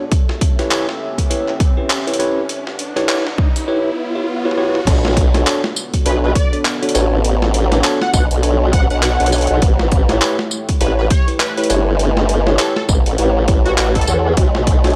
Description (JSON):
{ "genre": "glitch hop", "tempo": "101 BPM", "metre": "4/4", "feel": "swing 59% on 16ths", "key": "B minor", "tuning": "A4 = 438 Hz", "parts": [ { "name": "dark analog pad", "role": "sustained chords", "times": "0.0-15.0 s", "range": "A3 to F#5", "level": "-29 LUFS", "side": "equal", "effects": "chorus, sidechain pumping" }, { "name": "bell-like tine electric piano", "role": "stabs", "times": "0.0-14.9 s", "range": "D4 to C#5", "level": "-23 LUFS", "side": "equal", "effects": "vintage 12-bit sampler grit, sidechain pumping, low-pass filter, analog delay" }, { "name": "riser and swell", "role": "sound effects", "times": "0.6-4.9 s", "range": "none", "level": "-28 LUFS", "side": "equal", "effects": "none" }, { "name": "boom bap sampler-style drum kit", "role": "drums", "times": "0.1-15.0 s", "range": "crash cymbal, handclaps, hi-hat, snare drum, tambourine, toms", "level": "-23 LUFS", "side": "equal", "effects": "high-pass filter on hats, high-pass filter on snare, high-pass filter on toms, high-pass filter on cymbals, high-pass filter on perc, high-pass filter on room" }, { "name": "electronic kick drum", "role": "drums", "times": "0.1-14.8 s", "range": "none", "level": "-18 LUFS", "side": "equal", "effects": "none" }, { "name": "formant-sweep wobble bass", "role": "bass", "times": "4.9-14.9 s", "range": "G1 to E2", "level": "-18 LUFS", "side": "equal", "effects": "chorus, overdrive" }, { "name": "plucky unison lead", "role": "melody", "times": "6.1-14.4 s", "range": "F#4 to F#5", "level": "-26 LUFS", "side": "equal", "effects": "ensemble chorus, analog delay" } ], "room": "digital ambience", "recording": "dry, gritty hardware recording", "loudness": "-16 LUFS", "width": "mono", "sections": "0.0-4.9 A section; 4.9-15.0 B section", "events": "build-up 0.0-4.9; riser 0.6-4.9; swell 3.7-4.9; drum fill 4.6; drop 4.9-15.0", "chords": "0.1 A7; 4.9 Bm7; 9.6 A7; 14.4 Bm7", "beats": "| 0.12 0.71 1.30 1.90 | 2.49 3.09 3.68 4.28 | 4.87 5.46 6.06 6.65 | 7.25 7.84 8.43 9.03 | 9.62 10.22 10.81 11.40 | 12.00 12.59 13.19 13.78 | 14.37" }